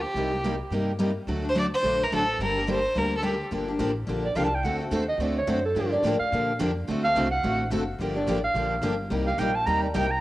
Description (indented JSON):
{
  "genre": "acoustic string swing (jazz manouche)",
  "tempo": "214 BPM",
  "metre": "4/4",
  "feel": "swing 56% on 8ths",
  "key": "G minor",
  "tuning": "A4 = 440 Hz",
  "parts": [
    { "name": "rich violin", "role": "melody", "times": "0.0-3.4 s", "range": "G4 to D5", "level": "-26 LUFS", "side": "equal", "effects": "cassette tape, analog delay" },
    { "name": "upright bass", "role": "bass", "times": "0.0-10.2 s", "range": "F#1 to Bb2", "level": "-32 LUFS", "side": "equal", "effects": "none" },
    { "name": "picked steel-string acoustic guitar", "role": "accompaniment", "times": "0.2-10.1 s", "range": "C3 to A4", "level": "-29 LUFS", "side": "left 3 dB", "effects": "cassette tape" },
    { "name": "picked steel-string acoustic guitar", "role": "accompaniment", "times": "0.2-10.1 s", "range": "C3 to A4", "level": "-31 LUFS", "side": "right 3 dB", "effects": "cassette tape" },
    { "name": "mellow clarinet", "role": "second line", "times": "4.2-10.2 s", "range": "A4 to Bb5", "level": "-26 LUFS", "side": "right 2 dB", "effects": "cassette tape" }
  ],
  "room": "wet spring reverb, RT60 2.2 s",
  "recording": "home recording on cassette",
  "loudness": "-23 LUFS",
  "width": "side -16 dB against mid",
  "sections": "0.0-3.5 A section; 3.5-10.2 B section",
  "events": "clarinet solo 3.5-10.2",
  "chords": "0.2 Cm7; 1.3 D; 2.4 Gm; 3.5 Gm7; 4.6 D7; 5.8 Gm7; 6.9 D7; 8.0 Gm7; 9.1 Cm7",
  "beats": "| 0.15 0.43 0.71 1.00 | 1.28 1.56 1.84 2.12 | 2.40 2.68 2.96 3.24 | 3.52 3.80 4.08 4.37 | 4.64 4.92 5.20 5.48 | 5.76 6.04 6.32 6.60 | 6.88 7.16 7.44 7.72 | 8.00 8.28 8.56 8.84 | 9.12 9.40 9.68 9.96"
}